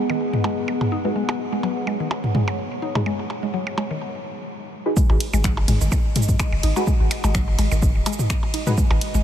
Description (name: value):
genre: minimal techno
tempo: 126 BPM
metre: 4/4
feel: swing 55% on 16ths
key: G# minor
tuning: A4 = 440 Hz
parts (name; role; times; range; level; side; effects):
- warbly tape-like pad; texture; 0.0-9.2 s; B3 to F#5; -29 LUFS; left 1 dB; chorus, built-in reverb, phaser, sidechain pumping
- mallet-like synth pluck; riff; 0.1-9.2 s; D#3 to D#4; -28 LUFS; equal; chorus, sidechain pumping, analog delay
- electronic percussion blips and toms; percussion; 0.1-9.0 s; none; -27 LUFS; equal; analog delay
- filtered dub chord stab; stabs; 1.0-8.7 s; D#4 to B4; -32 LUFS; equal; phaser, wide subtle chorus, analog delay
- electronic kick drum; drums; 5.0-8.9 s; none; -21 LUFS; equal; none
- punchy analog drum machine; drums; 5.0-9.2 s; finger snaps, hi-hat, ride cymbal, shaker; -29 LUFS; right 1 dB; low-pass filter on hats, low-pass filter on cymbals, low-pass filter on perc, low-pass filter on snare, low-pass filter on room
- punchy sub bass; bass; 5.1-9.2 s; D#1 to G#2; -20 LUFS; equal; sidechain pumping
room: moderate huge ambient reverb, RT60 7.6 s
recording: dreamy mix soaked in reverb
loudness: -19 LUFS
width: side -10 dB against mid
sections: 0.0-5.0 A section; 5.0-9.2 B section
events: break 4.0-5.0; drop 5.0-9.2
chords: 0.0 G#m7; 5.0 G#5